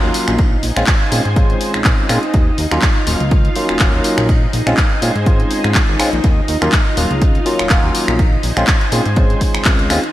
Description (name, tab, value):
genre	filtered disco house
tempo	123 BPM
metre	4/4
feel	swing 55% on 16ths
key	Eb dorian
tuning	A4 = 439 Hz
part	barky tine electric piano	accompaniment	0.0-10.0 s	Gb3 to F4	-20 LUFS	equal	phaser, sidechain pumping, low-pass filter
part	string machine, full ensemble	sustained chords	0.0-10.1 s	Eb4 to Ab5	-22 LUFS	equal	ensemble chorus, sidechain pumping, low-pass filter
part	fat analog bass	bass	0.0-10.0 s	Eb1 to Bb2	-19 LUFS	equal	sidechain pumping, low-pass filter
part	house drum kit	drums	0.1-10.1 s	finger snaps, handclaps, hi-hat	-20 LUFS	equal	sidechain pumping on hats, gated reverb
part	electronic kick drum	drums	0.4-9.8 s	none	-14 LUFS	equal	none
room	moderate lush hall reverb, RT60 2.4 s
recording	bright 1980s-style digital production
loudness	-12 LUFS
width	side -14 dB against mid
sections	0.0-10.1 A section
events	none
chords	0.4 Bbm9; 2.3 Ebm9; 4.3 Bbm9; 6.2 Ebm9; 8.2 Bbm9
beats	| 0.39 0.88 1.36 1.85 | 2.34 2.83 3.31 3.80 | 4.29 4.78 5.27 5.75 | 6.24 6.73 7.22 7.71 | 8.19 8.68 9.17 9.66